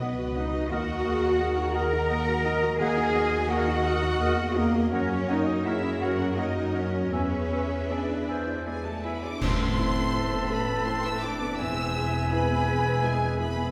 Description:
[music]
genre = cinematic, emotional film score for orchestra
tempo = 77-87 BPM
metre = 3/4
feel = rubato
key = A minor from 9.4 s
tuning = A4 = 440 Hz
[part]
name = rich symphonic violin section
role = melody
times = 0.0-13.7 s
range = C#5 to E6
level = -40 LUFS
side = equal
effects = none
[part]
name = concert flute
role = second line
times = 0.0-13.7 s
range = F#5 to A5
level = -37 LUFS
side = equal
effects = none
[part]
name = mellow clarinet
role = second line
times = 0.0-13.7 s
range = A#4 to E5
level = -41 LUFS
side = equal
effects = none
[part]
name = rich symphonic violin section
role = second line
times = 0.0-13.7 s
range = G#4 to A#5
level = -40 LUFS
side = equal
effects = none
[part]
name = warm oboe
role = second line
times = 0.0-13.7 s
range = C#5 to E5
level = -41 LUFS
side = equal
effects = none
[part]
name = dark grand piano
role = accompaniment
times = 0.0-13.7 s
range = B1 to B4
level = -35 LUFS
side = equal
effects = none
[part]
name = rich symphonic viola section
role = accompaniment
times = 0.0-13.7 s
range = B3 to B4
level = -38 LUFS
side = equal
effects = none
[part]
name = mellow French horn section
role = sustained chords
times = 0.0-13.7 s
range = G#3 to B4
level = -35 LUFS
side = equal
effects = none
[part]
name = warm symphonic cello section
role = bass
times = 0.0-13.7 s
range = E2 to A#4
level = -34 LUFS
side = equal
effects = none
[part]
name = warm symphonic double bass section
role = bass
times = 0.0-13.7 s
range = E1 to F#2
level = -34 LUFS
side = equal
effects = none
[part]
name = cymbal swell, clash cymbals and concert bass drum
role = percussion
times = 4.9-10.8 s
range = none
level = -37 LUFS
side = equal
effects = none
[sound]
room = wet scoring stage reverb, RT60 1.6 s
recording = heard from further back in the room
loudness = -26 LUFS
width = mono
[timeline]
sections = 0.0-9.4 A section; 9.4-13.7 B section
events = band accent 9.4-10.1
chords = 0.0 B; 0.7 D#m; 4.9 F#; 7.1 E7; 9.4 Amadd9; 11.6 E

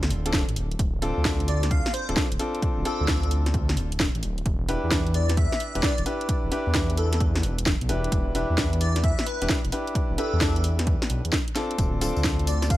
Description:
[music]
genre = UK garage, two-step garage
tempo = 131 BPM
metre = 4/4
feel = swing 66% on 16ths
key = unclear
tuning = A4 = 437 Hz
[part]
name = warm grand piano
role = stabs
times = 0.0-12.8 s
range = C4 to B4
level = -30 LUFS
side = left 1 dB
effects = digital delay
[part]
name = dark detuned saw bass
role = bass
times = 0.0-12.8 s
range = D1 to E2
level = -25 LUFS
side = equal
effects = none
[part]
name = garage drum kit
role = drums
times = 0.0-12.8 s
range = hi-hat, snare drum, tambourine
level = -28 LUFS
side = equal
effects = overdrive
[part]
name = electronic kick drum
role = drums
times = 0.3-12.8 s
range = none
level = -27 LUFS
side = equal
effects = none
[part]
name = airy dreamy lead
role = melody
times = 1.5-12.8 s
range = A4 to F5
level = -32 LUFS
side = left 1 dB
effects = chorus, cassette tape, digital delay
[sound]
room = digital ambience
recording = none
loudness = -22 LUFS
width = side -15 dB against mid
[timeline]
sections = 0.0-12.8 A section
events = none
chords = 0.0 Dm7; 4.5 Em7; 11.8 Dm7

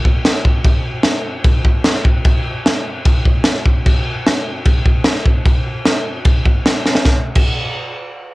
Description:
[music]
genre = rock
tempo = 150 BPM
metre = 4/4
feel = straight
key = none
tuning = none
[part]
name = crisp fusion drum kit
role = drums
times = 0.1-7.5 s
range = crash cymbal, kick drum, snare drum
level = -13 LUFS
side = equal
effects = cassette tape
[sound]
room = little or no reverb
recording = home recording on cassette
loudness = -13 LUFS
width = side -20 dB against mid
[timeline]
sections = 0.0-7.1 A section; 7.1-8.3 B section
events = drum fill 6.9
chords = none

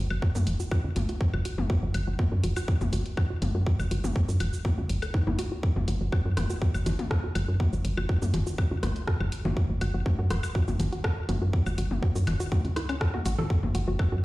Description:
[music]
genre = minimal techno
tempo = 122 BPM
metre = 4/4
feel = straight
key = unclear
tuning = A4 = 442 Hz
[part]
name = hollow square pluck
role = riff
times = 0.0-14.2 s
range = C#4 to A4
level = -37 LUFS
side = equal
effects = chorus, sidechain pumping, digital delay
[part]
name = woody FM bass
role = bass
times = 0.0-14.2 s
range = E1 to F#2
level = -27 LUFS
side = equal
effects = sidechain pumping
[part]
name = organic electronic drum kit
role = percussion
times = 0.1-14.1 s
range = congas, rim click, toms, woodblock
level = -35 LUFS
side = left 2 dB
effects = ping-pong delay
[part]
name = electronic kick drum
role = drums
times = 0.2-14.1 s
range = none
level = -25 LUFS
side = equal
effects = none
[part]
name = garage drum kit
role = drums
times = 0.4-13.9 s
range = cabasa, hi-hat, rim click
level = -39 LUFS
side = equal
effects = none
[sound]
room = little or no reverb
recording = played on a big sound system in a bare room, large studio reverb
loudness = -25 LUFS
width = side -19 dB against mid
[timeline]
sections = 0.0-14.2 A section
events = filter sweep on synth arpeggio sound 0.0-14.2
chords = 0.0 F#5

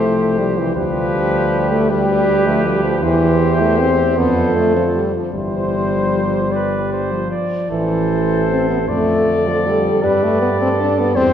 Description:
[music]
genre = classical, brass quintet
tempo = 52 BPM (dotted quarters)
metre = 6/8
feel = rubato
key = unclear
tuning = A4 = 440 Hz
[part]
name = warm trumpet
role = melody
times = 0.0-11.3 s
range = B4 to D5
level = -24 LUFS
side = left 4 dB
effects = none
[part]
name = warm flugelhorn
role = second line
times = 0.0-11.3 s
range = G4 to D5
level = -23 LUFS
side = right 3 dB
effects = none
[part]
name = warm French horn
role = accompaniment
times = 0.0-11.3 s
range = E3 to D4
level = -17 LUFS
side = left 1 dB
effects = none
[part]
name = warm euphonium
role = accompaniment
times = 0.0-11.3 s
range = D3 to G3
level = -24 LUFS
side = right 1 dB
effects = none
[part]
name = warm bass trombone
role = bass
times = 0.0-11.3 s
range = G1 to G2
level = -21 LUFS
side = right 2 dB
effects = none
[sound]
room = wet scoring stage reverb, RT60 1.8 s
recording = heard from further back in the room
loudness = -14 LUFS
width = side -9 dB against mid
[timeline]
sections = 0.0-11.3 A section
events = none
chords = 0.0 C; 0.8 G7/D; 3.0 C/E; 4.2 Dm7/F; 5.3 C/G; 6.5 G; 7.7 Am; 8.9 Dm/F; 10.0 G

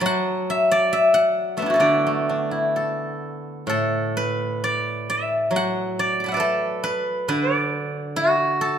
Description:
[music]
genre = chinese traditional, Chinese solo plucked strings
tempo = 62-69 BPM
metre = 2/4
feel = rubato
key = D gong mode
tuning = A4 = 439 Hz
[part]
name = steel-string zither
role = solo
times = 0.0-8.8 s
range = A2 to D6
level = -20 LUFS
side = equal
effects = none
[sound]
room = moderate recital hall reverb, RT60 1.8 s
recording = minimal, uncompressed stereo recording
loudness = -19 LUFS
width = side -8 dB against mid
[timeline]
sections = 0.0-3.7 A section; 3.7-8.8 B section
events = none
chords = none

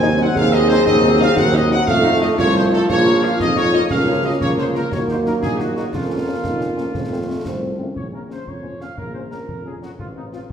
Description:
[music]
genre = military-style march for wind band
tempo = 118 BPM (dotted quarters)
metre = 6/8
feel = straight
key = Bb minor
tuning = A4 = 440 Hz
[part]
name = mellow trumpet section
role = melody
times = 0.0-10.5 s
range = Eb4 to Ab5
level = -22 LUFS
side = left 1 dB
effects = none
[part]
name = mellow euphonium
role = second line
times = 0.0-8.0 s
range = A3 to Ab4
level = -21 LUFS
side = right 2 dB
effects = none
[part]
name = mellow French horn section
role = accompaniment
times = 0.0-10.4 s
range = F3 to F4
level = -27 LUFS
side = left 4 dB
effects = none
[part]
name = warm trombone section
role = sustained chords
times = 0.0-7.8 s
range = F3 to C4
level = -23 LUFS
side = right 2 dB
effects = none
[part]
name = warm tuba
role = bass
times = 0.0-10.5 s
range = A1 to F2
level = -21 LUFS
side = right 1 dB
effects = none
[part]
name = concert snare drum, concert bass drum and clash cymbals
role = drums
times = 0.4-10.5 s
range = none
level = -28 LUFS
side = left 1 dB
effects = none
[sound]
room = wet recital hall reverb, RT60 1.7 s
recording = recorded in a church or concert hall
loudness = -15 LUFS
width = side -8 dB against mid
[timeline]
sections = 0.0-8.0 A section; 8.0-10.5 B section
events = none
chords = 0.0 Cdim/Eb; 1.9 F7; 2.9 Bbm; 3.9 Bbm/Db; 4.9 Ebm; 5.9 Bbm/F; 6.9 F; 8.0 Bbm; 10.0 F/A

